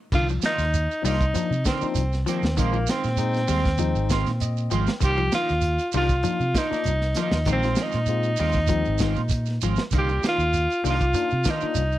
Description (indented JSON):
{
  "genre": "afrobeat",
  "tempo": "98 BPM",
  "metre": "4/4",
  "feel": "straight",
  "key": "C minor",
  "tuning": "A4 = 440 Hz",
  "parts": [
    { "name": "warm tenor saxophone", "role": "melody", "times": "0.1-12.0 s", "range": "Bb3 to G4", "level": "-26 LUFS", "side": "equal", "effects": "none" },
    { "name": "clean electric guitar", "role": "arpeggios", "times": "0.1-11.6 s", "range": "D3 to G3", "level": "-31 LUFS", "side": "left 6 dB", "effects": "slapback echo" },
    { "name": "electric guitar at the edge of break-up", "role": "stabs", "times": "0.1-11.7 s", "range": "Eb3 to F4", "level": "-30 LUFS", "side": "right 8 dB", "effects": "analog chorus" },
    { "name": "fingered electric bass", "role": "bass", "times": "0.1-12.0 s", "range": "Ab1 to C3", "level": "-25 LUFS", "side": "equal", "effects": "none" },
    { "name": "crunchy breakbeat drum kit", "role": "drums", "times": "0.1-11.9 s", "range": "crash cymbal, hi-hat, kick drum, snare drum", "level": "-27 LUFS", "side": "equal", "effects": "none" },
    { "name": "shekere", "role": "percussion", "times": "0.1-12.0 s", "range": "none", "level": "-31 LUFS", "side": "right 4 dB", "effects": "none" },
    { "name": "barky tine electric piano", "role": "accompaniment", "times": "1.0-11.8 s", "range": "F3 to G5", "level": "-31 LUFS", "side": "left 10 dB", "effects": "overdrive, auto-pan" }
  ],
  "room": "small room ambience",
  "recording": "dry, close 1970s-style studio recording",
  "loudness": "-21 LUFS",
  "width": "side -14 dB against mid",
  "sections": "0.1-12.0 A section",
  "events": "tine electric piano fill 4.1-5.0",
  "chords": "0.1 Cm11; 2.6 Bb9sus4; 5.0 Cm11; 7.5 Bb9sus4; 9.9 Cm11"
}